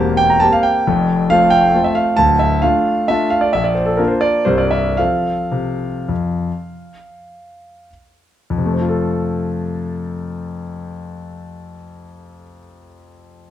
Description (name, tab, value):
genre	classical, piano waltz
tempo	92-142 BPM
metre	3/4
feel	rubato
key	F major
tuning	A4 = 440 Hz
part	clear concert grand piano	solo	0.0-13.5 s	C1 to Bb5	-15 LUFS	equal	none
room	moderate recital hall reverb, RT60 1.5 s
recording	close, detailed microphones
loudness	-14 LUFS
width	side -11 dB against mid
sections	0.0-8.5 A section; 8.5-12.2 B section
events	slowing down 4.2-8.5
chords	0.0 C7/E; 0.9 F; 2.2 Dm; 3.5 Bb; 4.5 C7; 5.0 F